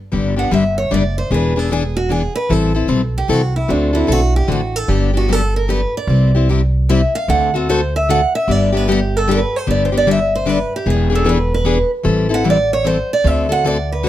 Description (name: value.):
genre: acoustic string swing (jazz manouche).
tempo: 151 BPM.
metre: 3/4.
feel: swing 64% on 8ths.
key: G major.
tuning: A4 = 436 Hz.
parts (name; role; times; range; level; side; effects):
picked plugged-in steel-string acoustic guitar; accompaniment; 0.1-14.1 s; C3 to A4; -17 LUFS; left 4 dB; none.
upright bass; bass; 0.1-14.1 s; E1 to D2; -18 LUFS; right 1 dB; none.
picked old ladder-braced acoustic guitar; melody; 0.4-14.1 s; D4 to F#5; -18 LUFS; right 2 dB; plate reverb.
room: light reverb.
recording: close, detailed microphones.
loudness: -13 LUFS.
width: side -13 dB against mid.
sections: 0.1-9.7 A section; 9.7-14.1 A section.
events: steel-string acoustic guitar solo 0.1-14.1.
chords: 0.1 G; 1.3 E7; 2.5 Am7; 3.7 D7; 4.9 Gmaj7; 6.1 C; 7.3 D7; 8.5 G; 10.9 E7; 12.1 Am7; 13.3 D7.